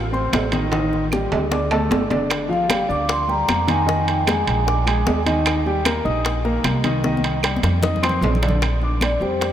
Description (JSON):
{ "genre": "Afro-Cuban jazz", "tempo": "152 BPM", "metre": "4/4", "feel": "straight", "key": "Bb major", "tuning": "A4 = 440 Hz", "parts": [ { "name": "warm grand piano", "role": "accompaniment", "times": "0.0-9.5 s", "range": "D3 to Eb6", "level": "-22 LUFS", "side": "left 1 dB", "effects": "none" }, { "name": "upright bass", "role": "bass", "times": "0.0-9.5 s", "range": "G1 to F2", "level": "-23 LUFS", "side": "equal", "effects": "none" }, { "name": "bongos", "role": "percussion", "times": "0.1-9.5 s", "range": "none", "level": "-30 LUFS", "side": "left 6 dB", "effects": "none" }, { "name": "congas", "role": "percussion", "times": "0.1-9.5 s", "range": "none", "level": "-28 LUFS", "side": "left 2 dB", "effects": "none" }, { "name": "claves", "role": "percussion", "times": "0.3-9.2 s", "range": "none", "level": "-35 LUFS", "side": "right 4 dB", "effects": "none" }, { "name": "timbales", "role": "percussion", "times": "0.3-9.5 s", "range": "none", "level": "-26 LUFS", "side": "right 5 dB", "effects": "none" }, { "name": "vibraphone with soft mallets", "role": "melody", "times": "2.5-5.0, 9.0-9.4 s", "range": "C5 to D6", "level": "-26 LUFS", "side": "right 1 dB", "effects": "tape echo" } ], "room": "moderate huge ambient reverb, RT60 7.5 s", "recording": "in a vast, echoing space", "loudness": "-17 LUFS", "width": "side -10 dB against mid", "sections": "0.0-8.6 A section", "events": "drum fill 0.7-2.3, 7.0-8.6", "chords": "0.0 D7(no3) (rootless); 0.7 Ebmaj7#11/A; 1.5 D5; 2.3 Gm7; 3.9 Fm7; 4.7 Bb7; 5.5 Eb6; 7.0 Cm; 7.8 F5; 8.6 Bb6" }